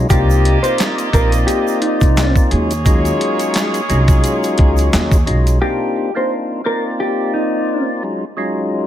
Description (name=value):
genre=hip hop, boom-bap hip-hop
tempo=87 BPM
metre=4/4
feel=swing 55% on 16ths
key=C minor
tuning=A4 = 440 Hz
part: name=percussive tonewheel organ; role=accompaniment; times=0.0-8.9 s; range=Gb3 to D5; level=-19 LUFS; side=left 1 dB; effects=overdrive, slow rotary speaker, high-pass filter, low-pass filter
part: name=upright bass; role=bass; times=0.0-5.6 s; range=Bb1 to Eb2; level=-16 LUFS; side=equal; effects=none
part: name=mellow electric guitar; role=melody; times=0.1-7.8 s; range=Eb4 to C5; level=-20 LUFS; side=left 1 dB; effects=high-pass filter, low-pass filter
part: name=clear horn section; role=stabs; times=0.1-5.2 s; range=Bb3 to Eb5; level=-23 LUFS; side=right 2 dB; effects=high-pass filter, low-pass filter, digital delay
part: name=dusty soul sampler-style drum kit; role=drums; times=0.1-5.6 s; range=handclaps, hi-hat, kick drum, snare drum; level=-15 LUFS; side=equal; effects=none
part: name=egg shaker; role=percussion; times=0.1-5.6 s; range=none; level=-33 LUFS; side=right 13 dB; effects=none
room=small room ambience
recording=none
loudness=-13 LUFS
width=side -11 dB against mid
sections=0.0-5.6 A section; 5.6-8.9 B section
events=none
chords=0.1 Cm11; 2.5 Ebm11; 5.6 Cm11; 8.0 Ebm11